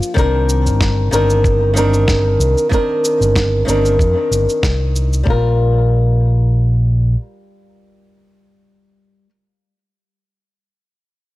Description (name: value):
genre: sunset chillout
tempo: 94 BPM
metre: 4/4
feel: swing 53% on 16ths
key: Bb major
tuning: A4 = 443 Hz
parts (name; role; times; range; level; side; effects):
- flamenco guitar; accompaniment; 0.0-9.3 s; Eb3 to Bb4; -16 LUFS; left 1 dB; auto-pan, tape echo
- electronic cabasa and snare drum; drums; 0.0-5.2 s; none; -23 LUFS; equal; none
- fingered electric bass; bass; 0.2-7.1 s; G1 to F2; -15 LUFS; equal; none
- electronic kick drum; drums; 0.2-5.4 s; none; -16 LUFS; equal; none
room: light reverb, small room reverb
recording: dry, gritty hardware recording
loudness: -12 LUFS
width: side -17 dB against mid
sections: 0.0-5.3 A section; 5.3-7.8 B section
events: none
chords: 0.2 Cm9; 5.3 Bb5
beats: | 0.16 0.80 1.44 2.08 | 2.72 3.35 3.99 4.63 | 5.27 5.91 6.55 7.18